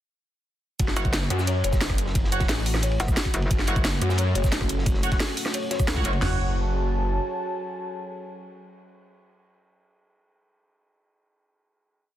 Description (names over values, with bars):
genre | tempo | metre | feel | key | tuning
dark technical drum and bass | 177 BPM | 4/4 | straight | F# minor | A4 = 439 Hz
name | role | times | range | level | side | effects
felt-muted upright piano | arpeggios | 0.8-6.4 s | F#4 to F#5 | -34 LUFS | left 6 dB | sidechain pumping, digital delay
wide detuned saw bass | bass | 0.8-7.2 s | F#1 to F#2 | -25 LUFS | equal | chorus, sidechain pumping
crunchy breakbeat drum kit | drums | 0.8-6.2 s | hi-hat, ride cymbal, snare drum | -36 LUFS | equal | high-pass filter on cymbals, high-pass filter on hats, high-pass filter on snare, high-pass filter on room
drum and bass drum kit | drums | 0.8-6.3 s | crash cymbal, kick drum, snare drum, toms | -25 LUFS | equal | overdrive
drum and bass drum kit | drums | 0.8-6.1 s | cabasa, hi-hat, rim click, snare drum | -28 LUFS | equal | overdrive
band-passed chord stab | stabs | 1.0-9.6 s | F#4 to F#5 | -33 LUFS | right 3 dB | wide subtle chorus, digital delay
metallic wobble bass | bass | 1.0-6.2 s | F#1 to C#2 | -26 LUFS | equal | distortion, chorus
dark analog pad | sustained chords | 3.5-9.6 s | A3 to A5 | -32 LUFS | right 1 dB | chorus, sidechain pumping
room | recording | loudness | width
light reverb, digital ambience | dense, heavily limited modern master | -22 LUFS | side -12 dB against mid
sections
0.8-6.2 drop; 6.2-8.9 final chord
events
drop 0.8-6.2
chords
0.8 F#m